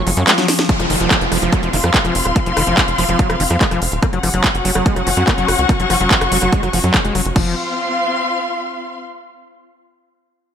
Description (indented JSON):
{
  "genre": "psychedelic trance",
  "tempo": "144 BPM",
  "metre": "4/4",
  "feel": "straight",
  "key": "unclear",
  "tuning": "A4 = 436 Hz",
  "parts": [
    { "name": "overtone-sweeping drone", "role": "sustained chords", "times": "0.0-0.7 s", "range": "F3 to F4", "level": "-26 LUFS", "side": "left 3 dB", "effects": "chorus, built-in reverb, sidechain pumping" },
    { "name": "overdriven acid bass", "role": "riff", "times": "0.0-7.6 s", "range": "Eb3 to Bb3", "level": "-21 LUFS", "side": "moving between left 4 dB and right 6 dB", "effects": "distortion, auto-pan, sidechain pumping, dub echo" },
    { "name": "tight sequencer bass", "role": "bass", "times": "0.0-7.6 s", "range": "Eb1 to Gb2", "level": "-21 LUFS", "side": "equal", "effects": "none" },
    { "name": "dark symphonic string section", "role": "texture", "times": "0.0-9.0 s", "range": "C4 to Db6", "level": "-20 LUFS", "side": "left 3 dB", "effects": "sidechain pumping" },
    { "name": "techno drum kit", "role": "drums", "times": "0.1-7.4 s", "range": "crash cymbal, handclaps, hi-hat, rim click, snare drum", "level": "-18 LUFS", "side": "equal", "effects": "overdrive, studio reverb" },
    { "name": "electronic kick drum", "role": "drums", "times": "0.7-7.4 s", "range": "none", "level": "-16 LUFS", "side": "equal", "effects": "overdrive, studio reverb" },
    { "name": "downlifter", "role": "sound effects", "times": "0.7-4.0 s", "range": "none", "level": "-24 LUFS", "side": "right 1 dB", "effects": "none" }
  ],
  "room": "light reverb",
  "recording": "none",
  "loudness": "-13 LUFS",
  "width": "side -8 dB against mid",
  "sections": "0.7-7.4 A section; 7.4-9.0 B section",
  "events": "drum fill 0.3-0.7; filter sweep on analog synth bass 0.7-7.4",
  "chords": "0.0 Gb5; 0.7 F5; 4.0 Gb5; 7.4 F5"
}